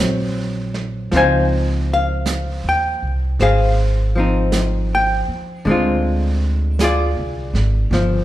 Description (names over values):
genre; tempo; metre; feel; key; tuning
jazz; 53 BPM; 4/4; swing 67% on 8ths; unclear; A4 = 440 Hz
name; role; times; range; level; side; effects
archtop guitar, miked and amplified; accompaniment; 0.0-8.2 s; D3 to Ab5; -19 LUFS; left 1 dB; none
upright bass; bass; 0.0-8.2 s; G1 to Eb2; -19 LUFS; equal; none
vintage brush drum kit; drums; 0.7-8.2 s; brushed snare drum, hi-hat, snare drum; -27 LUFS; right 4 dB; none
room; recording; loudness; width
moderate recital hall reverb, RT60 1.4 s; recorded in a church or concert hall; -16 LUFS; side -14 dB against mid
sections
0.0-8.2 A section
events
none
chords
0.0 Ab9 (rootless); 1.1 Dbmaj9; 5.7 Dm7b5